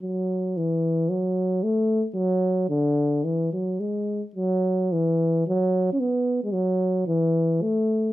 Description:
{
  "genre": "alpine folk",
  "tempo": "111 BPM",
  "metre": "2/4",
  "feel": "rubato",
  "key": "unclear",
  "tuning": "A4 = 439 Hz",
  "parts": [
    { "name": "dark euphonium", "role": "solo", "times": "0.0-8.1 s", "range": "D3 to C#4", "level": "-21 LUFS", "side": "equal", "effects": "none" }
  ],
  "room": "light reverb",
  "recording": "none",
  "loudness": "-21 LUFS",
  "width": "side -15 dB against mid",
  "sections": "0.0-8.1 A section",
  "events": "none",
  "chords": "none"
}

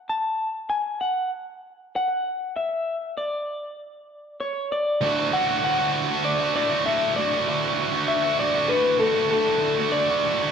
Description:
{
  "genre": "rock",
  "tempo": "98 BPM",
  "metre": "3/4",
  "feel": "straight",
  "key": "D major",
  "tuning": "A4 = 442 Hz",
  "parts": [
    { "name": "electric guitar through a small old amp", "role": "melody", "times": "0.1-10.5 s", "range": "A4 to A5", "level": "-24 LUFS", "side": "left 2 dB", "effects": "spring reverb, slapback echo" },
    { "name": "tight distorted guitar", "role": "riff", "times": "5.0-10.5 s", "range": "D2 to F#4", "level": "-23 LUFS", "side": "right 3 dB", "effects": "distortion" }
  ],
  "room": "light reverb",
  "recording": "dark, warm production",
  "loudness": "-21 LUFS",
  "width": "side -7 dB against mid",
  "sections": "0.0-5.0 A section; 5.0-10.5 B section",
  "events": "none",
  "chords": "0.0 N.C.; 5.0 D"
}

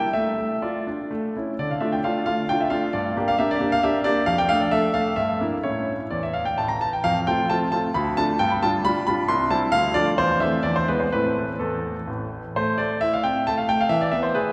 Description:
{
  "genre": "classical-period piano sonatina",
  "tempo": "120-139 BPM",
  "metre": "3/4",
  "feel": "rubato",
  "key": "D minor, A minor from 7.0 s",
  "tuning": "A4 = 440 Hz",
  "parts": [
    { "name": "bright grand piano", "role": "solo", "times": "0.0-14.5 s", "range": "A1 to C6", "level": "-23 LUFS", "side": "equal", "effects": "none" }
  ],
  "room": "wet church reverb, RT60 3.3 s",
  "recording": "recorded in a church or concert hall",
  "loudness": "-23 LUFS",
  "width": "mono",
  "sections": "0.0-1.6 A section; 1.6-12.6 B section; 12.6-14.5 A section",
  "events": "none",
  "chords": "0.1 Dm/A; 1.1 A; 1.6 Dm; 2.9 Gm; 4.3 Dm/F; 5.2 Em7b5/G; 5.6 A; 7.0 F; 7.9 Dm; 8.4 G5; 9.3 C; 9.7 Dm; 10.2 Am/E; 10.6 E; 11.1 Am; 13.9 E7"
}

